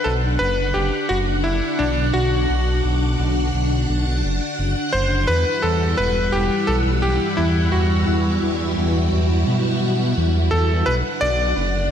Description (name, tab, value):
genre	synthwave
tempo	86 BPM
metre	4/4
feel	straight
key	E minor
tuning	A4 = 441 Hz
part	clear electric grand piano	melody	0.0-11.9 s	D4 to D5	-22 LUFS	left 1 dB	slapback echo, tape echo
part	string machine, full ensemble	sustained chords	0.0-11.9 s	G3 to F#5	-23 LUFS	equal	ensemble chorus
part	dark detuned saw bass	bass	0.1-11.9 s	E1 to B2	-20 LUFS	equal	none
room	moderate lush hall reverb, RT60 1.8 s, digital ambience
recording	big arena sound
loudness	-17 LUFS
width	side -9 dB against mid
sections	0.0-11.9 A section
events	none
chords	0.0 Bm; 5.3 Emadd9; 10.9 Bm